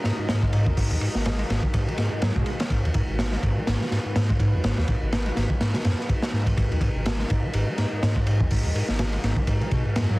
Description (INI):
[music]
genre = breakbeat, breaks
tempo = 124 BPM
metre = 4/4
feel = swing 57% on 16ths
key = G# minor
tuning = A4 = 440 Hz
[part]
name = dark analog pad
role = sustained chords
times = 0.0-10.2 s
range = G#3 to D#5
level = -33 LUFS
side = equal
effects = chorus, vintage 12-bit sampler grit, sidechain pumping
[part]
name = overdriven acid bass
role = riff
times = 0.0-10.2 s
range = F#2 to G#3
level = -27 LUFS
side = equal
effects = none
[part]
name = crunchy breakbeat drum kit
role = drums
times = 0.0-10.1 s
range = hi-hat, kick drum, ride cymbal, snare drum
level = -25 LUFS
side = equal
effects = none
[part]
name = saturated sub bass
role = bass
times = 0.2-10.2 s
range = G#1 to G#2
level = -25 LUFS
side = equal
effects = none
[part]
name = swell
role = sound effects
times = 1.9-2.7 s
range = none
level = -38 LUFS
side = right 2 dB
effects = none
[sound]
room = small room ambience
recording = dense, heavily limited modern master, vinyl crackle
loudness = -21 LUFS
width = side -21 dB against mid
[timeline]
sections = 0.0-10.2 A section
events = swell 1.9-2.7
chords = 0.0 G#m7